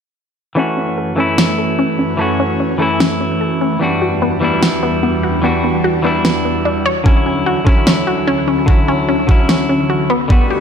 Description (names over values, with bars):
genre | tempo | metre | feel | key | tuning
future bass | 148 BPM | 4/4 | half-time | unclear | A4 = 438 Hz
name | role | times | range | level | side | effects
semi-hollow electric guitar | accompaniment | 0.6-10.6 s | D3 to F#4 | -17 LUFS | left 1 dB | sidechain pumping, low-pass filter, dub echo
ethereal airy pad | sustained chords | 0.9-10.6 s | D2 to F#4 | -20 LUFS | right 1 dB | ensemble chorus, built-in reverb, sidechain pumping
wide unison pluck | arpeggios | 0.6-10.5 s | B3 to C#5 | -19 LUFS | left 2 dB | sidechain pumping, dub echo
electronic snare drum | drums | 1.4-9.6 s | none | -16 LUFS | right 1 dB | studio reverb
electronic kick drum | drums | 7.1-10.4 s | none | -11 LUFS | equal | studio reverb
riser | sound effects | 10.4-10.6 s | none | -28 LUFS | left 1 dB | none
room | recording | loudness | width
moderate digital room reverb, RT60 1.0 s | none | -12 LUFS | side -7 dB against mid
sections
0.6-10.6 A section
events
filter sweep on synth arpeggio sound 0.6-10.6; riser 10.4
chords
0.6 F#m7; 3.8 Em9; 6.9 Dmaj9; 10.1 Gmaj7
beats
| 0.57 0.98 1.38 1.79 | 2.19 2.60 3.00 3.41 | 3.81 4.22 4.63 5.03 | 5.44 5.84 6.25 6.65 | 7.06 7.46 7.87 8.27 | 8.68 9.09 9.49 9.90 | 10.30